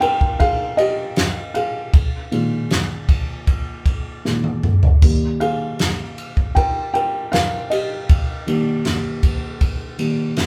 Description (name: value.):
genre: pop ballad.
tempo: 78 BPM.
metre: 4/4.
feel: straight.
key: Eb major.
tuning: A4 = 441 Hz.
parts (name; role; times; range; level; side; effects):
felt-muted upright piano; accompaniment; 0.0-10.5 s; Ab2 to G5; -24 LUFS; equal; none.
unplugged drum kit; drums; 0.0-10.5 s; kick drum, ride cymbal, snare drum, splash cymbal, toms; -20 LUFS; equal; none.
room: wet studio reverb, RT60 0.5 s.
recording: band playing live in one room.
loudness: -19 LUFS.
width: mono.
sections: 0.0-10.5 A section.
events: felt piano solo 0.0-10.5; drum fill 4.2-5.0.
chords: 0.0 Abm; 1.9 Bb7sus4; 5.0 Ebadd9.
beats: 0.41 1.17 | 1.94 2.70 3.47 4.25 | 5.02 5.79 6.56 7.33 | 8.10 8.86 9.62 10.37.